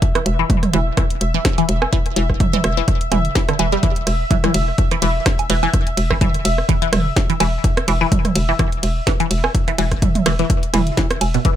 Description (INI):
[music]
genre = minimal techno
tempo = 126 BPM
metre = 4/4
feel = swing 55% on 16ths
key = unclear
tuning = A4 = 442 Hz
[part]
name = electronic kick drum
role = drums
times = 0.0-11.6 s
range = none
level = -18 LUFS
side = equal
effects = none
[part]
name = garage drum kit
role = drums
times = 0.0-11.6 s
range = hi-hat, ride cymbal, snare drum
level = -25 LUFS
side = equal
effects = none
[part]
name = pulsing gated texture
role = texture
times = 0.0-11.6 s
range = E5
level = -26 LUFS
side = right 1 dB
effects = chorus, built-in reverb, sidechain pumping
[part]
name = resonant blip pluck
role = riff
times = 0.2-11.5 s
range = B2 to G3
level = -22 LUFS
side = equal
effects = phaser, sidechain pumping, digital delay
[part]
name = techno drum kit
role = percussion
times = 0.2-11.3 s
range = rim click, toms, woodblock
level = -22 LUFS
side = right 4 dB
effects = overdrive, ping-pong delay
[part]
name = hollow knocking FM bass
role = bass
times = 0.3-11.4 s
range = E1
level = -20 LUFS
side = equal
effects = sidechain pumping
[sound]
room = light reverb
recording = none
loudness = -15 LUFS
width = side -11 dB against mid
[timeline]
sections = 0.0-11.6 A section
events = none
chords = 0.0 E5